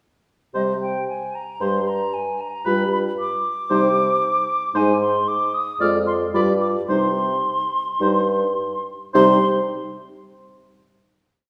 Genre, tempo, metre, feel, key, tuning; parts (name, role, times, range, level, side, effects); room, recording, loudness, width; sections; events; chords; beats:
quick classical-period movement for wind quintet; 105-115 BPM; 4/4; straight; C minor; A4 = 440 Hz
warm oboe; second line; 0.5-9.4 s; B4 to D5; -30 LUFS; equal
mellow bassoon; bass; 0.5-9.4 s; F2 to C3; -25 LUFS; equal
hollow concert flute; melody; 0.6-9.5 s; Eb5 to F6; -26 LUFS; equal
mellow French horn; accompaniment; 0.6-9.4 s; G3 to Ab3; -28 LUFS; equal
mellow clarinet; accompaniment; 0.6-9.4 s; Eb4 to G4; -29 LUFS; equal
wet recital hall reverb, RT60 1.8 s; recorded in a church or concert hall; -21 LUFS; mono
0.6-9.2 A section; 9.2-11.4 final chord
slowing down 3.7-9.2
0.6 C5; 2.7 G7; 3.7 Cm; 4.8 Ab; 5.8 Ddim/F; 6.3 G7(no3); 6.9 Cm
| 0.55 1.08 1.61 2.14 | 2.66 3.19 3.71 4.23 | 4.75 5.27 5.80 6.34 | 6.89 7.45 8.01 8.58 | 9.15